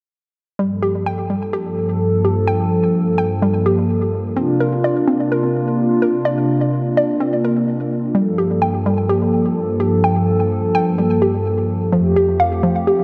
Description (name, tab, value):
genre	hip hop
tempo	127 BPM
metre	4/4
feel	half-time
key	G minor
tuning	A4 = 441 Hz
part	hollow soft pad	sustained chords	0.6-13.0 s	F2 to A4	-19 LUFS	equal	chorus
part	hollow square pluck	arpeggios	0.6-13.0 s	F3 to G5	-22 LUFS	equal	chorus, digital delay
room	moderate huge ambient reverb, RT60 4.7 s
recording	nothing above 11.0 kHz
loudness	-18 LUFS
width	mono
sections	0.6-13.0 A section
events	none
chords	0.6 Gm9; 4.4 C9sus4; 8.1 Gm9; 11.9 Fadd9